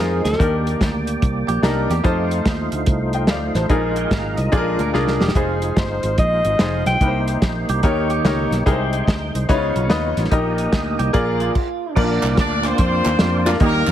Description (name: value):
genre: uptempo gospel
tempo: 145 BPM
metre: 4/4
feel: swing 65% on 8ths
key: unclear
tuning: A4 = 439 Hz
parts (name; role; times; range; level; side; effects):
- breathy alto saxophone; melody; 0.0-0.6, 5.2-7.2 s; G4 to G5; -22 LUFS; left 1 dB; slapback echo
- clear baby grand piano; accompaniment; 0.0-13.9 s; Bb2 to G5; -22 LUFS; left 2 dB; none
- overdriven tonewheel organ; sustained chords; 0.0-13.9 s; G3 to G5; -24 LUFS; right 2 dB; slow rotary speaker, chorus vibrato
- fingered electric bass; bass; 0.0-13.9 s; Fb1 to F2; -22 LUFS; equal; none
- warm soul drum kit; drums; 0.3-13.9 s; crash cymbal, hi-hat, kick drum, snare drum; -20 LUFS; equal; none
- clean electric guitar; second line; 1.5-11.9 s; F4 to Bb4; -27 LUFS; right 6 dB; none
- group handclap; percussion; 12.2-13.9 s; none; -29 LUFS; right 5 dB; none
- warm horn section; melody; 12.4-13.9 s; Bb3 to D5; -21 LUFS; left 1 dB; none
room: light reverb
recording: heavily compressed radio sound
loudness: -16 LUFS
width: side -11 dB against mid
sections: 0.0-12.0 A section; 12.0-13.9 B section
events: drum fill 4.9-5.4; stop 11.6-12.0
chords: 0.4 Ebmaj7; 2.0 F7; 3.7 Bb7sus4; 4.5 Bb7; 5.4 Fm7; 7.0 Cm7; 7.8 Eb7; 8.7 Abmaj7/C; 9.5 Db9; 10.3 Eb/Bb; 11.1 Bb7; 12.0 Bb